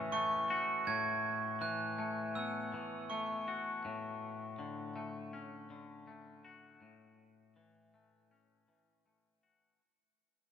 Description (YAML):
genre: rock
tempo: 81 BPM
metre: 4/4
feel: straight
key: unclear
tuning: A4 = 440 Hz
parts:
  - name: glockenspiel with hard plastic mallets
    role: arpeggios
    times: 0.0-3.8 s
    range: C#6 to G#6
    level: -38 LUFS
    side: right 2 dB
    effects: none
  - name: twangy electric guitar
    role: arpeggios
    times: 0.0-9.8 s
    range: A2 to F#4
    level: -40 LUFS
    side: left 3 dB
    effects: none
room: wet cathedral reverb, RT60 4.5 s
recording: recorded in a church or concert hall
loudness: -35 LUFS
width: side -8 dB against mid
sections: 0.0-9.8 A section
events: fade-out 0.0-9.8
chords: 0.0 A6; 0.9 Esus2/A; 3.8 Dmaj7/A; 6.8 F#m7/A